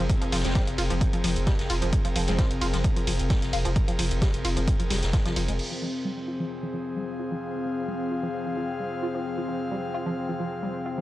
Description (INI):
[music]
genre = driving peak-time techno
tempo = 131 BPM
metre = 4/4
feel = straight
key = F minor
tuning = A4 = 440 Hz
[part]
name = tight sequenced synth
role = riff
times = 0.0-11.0 s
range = F3 to F4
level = -33 LUFS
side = equal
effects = chorus, phaser, overdrive, sidechain pumping, analog delay
[part]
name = saturated sub bass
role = bass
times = 0.0-5.6 s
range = F1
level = -28 LUFS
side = equal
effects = overdrive, sidechain pumping, low-pass filter
[part]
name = deep dark ambient pad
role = drone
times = 0.0-11.0 s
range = F3 to C4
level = -33 LUFS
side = left 2 dB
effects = chorus, built-in reverb, sidechain pumping
[part]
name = airy breathy pad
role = texture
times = 0.0-11.0 s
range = C4 to F5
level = -34 LUFS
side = left 1 dB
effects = chorus, sidechain pumping
[part]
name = electronic kick drum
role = drums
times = 0.1-5.2 s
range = none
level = -24 LUFS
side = equal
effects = none
[part]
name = soft-mallet drum kit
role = drums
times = 0.1-5.6 s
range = ride cymbal, snare drum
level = -40 LUFS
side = right 1 dB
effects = high-pass filter on cymbals, high-pass filter on snare, high-pass filter on room
[part]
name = techno drum kit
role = drums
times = 0.1-5.7 s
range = crash cymbal, hi-hat, ride cymbal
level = -34 LUFS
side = right 1 dB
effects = none
[part]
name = rave stab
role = stabs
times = 0.4-2.5 s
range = F3 to C4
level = -34 LUFS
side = equal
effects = chorus, built-in reverb, sidechain pumping, analog delay
[sound]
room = digital ambience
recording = cassette tape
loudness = -24 LUFS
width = side -15 dB against mid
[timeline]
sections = 0.0-5.6 A section; 5.6-11.0 B section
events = drop 0.0-5.6; filter sweep on synth arpeggio sound 5.6-11.0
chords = 0.0 Fm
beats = | 0.10 0.55 1.01 1.47 | 1.93 2.39 2.84 3.30 | 3.76 4.22 4.68 5.13 | 5.59 6.05 6.51 6.97 | 7.42 7.88 8.34 8.80 | 9.26 9.71 10.17 10.63